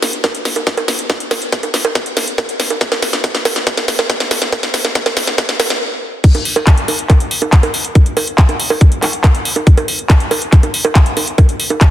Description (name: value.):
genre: trance.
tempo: 140 BPM.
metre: 4/4.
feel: straight.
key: none.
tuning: none.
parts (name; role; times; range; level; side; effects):
drum and bass drum kit; drums; 0.0-11.9 s; bongos, crash cymbal, handclaps, hi-hat, snare drum; -15 LUFS; right 1 dB; high-pass filter on snare, high-pass filter on hats, high-pass filter on perc, high-pass filter on cymbals, high-pass filter on room.
electronic kick drum; drums; 0.2-11.9 s; none; -10 LUFS; equal; high-pass filter on kick, high-pass filter on room.
room: light reverb.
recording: dense, heavily limited modern master.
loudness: -11 LUFS.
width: side -13 dB against mid.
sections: 0.0-6.2 A section; 6.2-11.9 B section.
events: build-up 0.0-6.2; drum fill 0.0-5.8; stop 5.8-6.2; drop 6.2-11.9.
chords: none.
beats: 0.24 0.67 | 1.10 1.52 1.95 2.38 | 2.81 3.24 3.67 4.10 | 4.53 4.95 5.38 5.81 | 6.24 6.67 7.10 7.53 | 7.95 8.38 8.81 9.24 | 9.67 10.10 10.53 10.95 | 11.38 11.81.